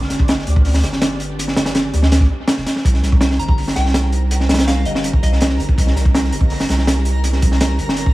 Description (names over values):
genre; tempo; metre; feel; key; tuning
drum and bass, jungle; 164 BPM; 4/4; straight; C minor; A4 = 440 Hz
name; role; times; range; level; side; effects
saturated sub bass; bass; 0.0-8.1 s; F1 to D2; -18 LUFS; equal; none
crunchy breakbeat drum kit; drums; 0.0-8.1 s; hi-hat, kick drum, snare drum; -16 LUFS; equal; dub echo
twinkling granular texture; texture; 3.4-8.1 s; Bb4 to Bb5; -31 LUFS; equal; built-in reverb
soft synth bell; melody; 3.4-5.5 s; Eb5 to Bb5; -29 LUFS; left 1 dB; chorus, vintage 12-bit sampler grit, dub echo
room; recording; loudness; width
studio reverb; echo-heavy mix, small room ambience; -14 LUFS; side -17 dB against mid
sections
0.0-2.8 A section; 2.8-8.1 A section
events
drop 0.0-2.8, 2.8-8.1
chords
0.0 G; 2.8 Cm7